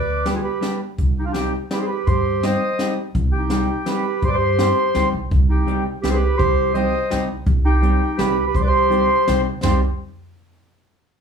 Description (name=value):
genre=musette waltz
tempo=167 BPM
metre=3/4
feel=straight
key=C harmonic minor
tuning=A4 = 440 Hz
part: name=mellow accordion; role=melody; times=0.0-9.8 s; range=F4 to Eb5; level=-22 LUFS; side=left 1 dB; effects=none
part: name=bright clarinet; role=second line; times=0.0-9.8 s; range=D4 to C5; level=-24 LUFS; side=right 5 dB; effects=none
part: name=upright bass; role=bass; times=0.0-9.8 s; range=C2 to G2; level=-21 LUFS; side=right 1 dB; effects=none
part: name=vintage hollow-body jazz guitar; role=accompaniment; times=0.3-9.8 s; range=G3 to G4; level=-24 LUFS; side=left 2 dB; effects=none
part: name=jazz brush drum kit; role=drums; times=0.3-9.7 s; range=hi-hat, kick drum, ride cymbal, snare drum, toms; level=-25 LUFS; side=left 1 dB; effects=none
room=moderate studio reverb, RT60 0.6 s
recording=studio reverb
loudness=-17 LUFS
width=side -6 dB against mid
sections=0.0-5.3 A section; 5.3-9.6 B section; 9.6-10.7 C section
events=none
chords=0.0 G; 1.0 Cm